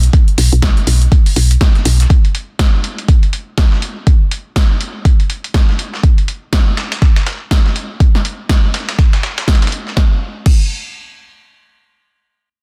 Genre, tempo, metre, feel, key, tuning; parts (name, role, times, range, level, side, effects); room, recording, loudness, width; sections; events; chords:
deep house; 122 BPM; 4/4; swing 59% on 16ths; A4 = 439 Hz
woody FM bass; bass; 0.0-2.1 s; Cb2; -13 LUFS; equal; sidechain pumping
punchy analog drum machine; drums; 0.0-10.6 s; crash cymbal, hi-hat, snare drum; -24 LUFS; equal; overdrive
dusty soul sampler-style drum kit; drums; 0.1-10.0 s; hi-hat, snare drum; -26 LUFS; equal; high-pass filter on hats, high-pass filter on snare
electronic kick drum; drums; 0.1-10.6 s; -13 LUFS; equal
digital ambience; dense, heavily limited modern master; -13 LUFS; mono
0.0-10.0 A section; 10.0-12.6 B section